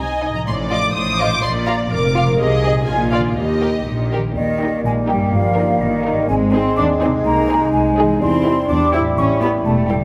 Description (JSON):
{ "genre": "cinematic, playful, whimsical film cue", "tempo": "125 BPM", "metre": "2/4", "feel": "straight", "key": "Eb major", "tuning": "A4 = 440 Hz", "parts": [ { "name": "muted studio violin section", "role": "melody", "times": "0.0-10.0 s", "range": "A4 to Eb6", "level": "-26 LUFS", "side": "equal", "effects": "none" }, { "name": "muted studio viola section", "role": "accompaniment", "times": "0.0-10.0 s", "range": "Eb4 to Eb5", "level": "-27 LUFS", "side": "equal", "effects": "none" }, { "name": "concert harp", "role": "arpeggios", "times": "0.0-10.0 s", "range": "G2 to C5", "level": "-28 LUFS", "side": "equal", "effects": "none" }, { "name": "muted studio cello section", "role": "bass", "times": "0.0-10.0 s", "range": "Eb2 to E4", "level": "-25 LUFS", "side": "equal", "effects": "none" }, { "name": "muted studio double bass section", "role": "bass", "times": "0.0-10.0 s", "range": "E1 to E2", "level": "-25 LUFS", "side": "equal", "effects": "none" }, { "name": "muted studio violin section", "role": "second line", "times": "0.2-10.0 s", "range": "Eb4 to F5", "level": "-28 LUFS", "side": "equal", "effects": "none" }, { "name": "dark clarinet", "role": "second line", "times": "4.4-10.0 s", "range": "Bb3 to E4", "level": "-26 LUFS", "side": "equal", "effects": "none" }, { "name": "mellow hollow flute section", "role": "second line", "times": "4.4-9.9 s", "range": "Eb5 to E6", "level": "-24 LUFS", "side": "equal", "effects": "none" }, { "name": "clear bassoon", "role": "accompaniment", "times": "4.4-10.0 s", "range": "G3 to Ab3", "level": "-25 LUFS", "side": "equal", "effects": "none" }, { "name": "mellow French horn section", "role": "sustained chords", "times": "4.4-10.0 s", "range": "G3 to E4", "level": "-26 LUFS", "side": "equal", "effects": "none" } ], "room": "wet scoring stage reverb, RT60 1.9 s", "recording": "none", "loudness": "-17 LUFS", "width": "mono", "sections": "0.0-4.4 A section; 4.4-10.0 A section", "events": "none", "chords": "0.5 F7/A; 1.4 Bb; 2.4 Ab/C; 2.9 Bb7; 3.4 Eb; 5.3 Eb/G; 6.3 Ab; 7.3 Ab/C; 8.2 C/E; 9.2 A7", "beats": "| 0.47 0.95 | 1.43 1.91 | 2.39 2.88 | 3.37 3.87 | 4.36 4.84 | 5.33 5.81 | 6.29 6.77 | 7.25 7.73 | 8.21 8.70 | 9.18 9.65" }